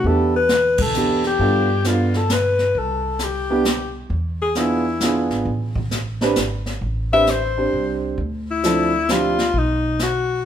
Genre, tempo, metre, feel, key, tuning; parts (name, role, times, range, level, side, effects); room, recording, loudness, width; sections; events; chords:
jazz, small-group swing and bop; 133 BPM; 3/4; swing 66% on 8ths; A minor; A4 = 439 Hz
clear alto saxophone; melody; 0.0-10.5 s; D#4 to E5; -20 LUFS; left 4 dB
warm grand piano; accompaniment; 0.0-9.4 s; F3 to C5; -21 LUFS; right 3 dB
upright bass; bass; 0.0-10.5 s; G#1 to G2; -25 LUFS; equal
jazz brush drum kit; drums; 0.0-10.5 s; brushed snare drum, hi-hat, kick drum, ride cymbal, snare drum; -26 LUFS; equal
moderate large studio reverb, RT60 1.1 s; band playing live in one room; -17 LUFS; side -9 dB against mid
0.0-8.2 A section; 8.2-10.5 B section
band accent 0.7
0.0 Em7; 1.4 G7; 2.8 C5; 4.1 E7b9; 5.5 Am11; 8.2 Dm9; 9.5 B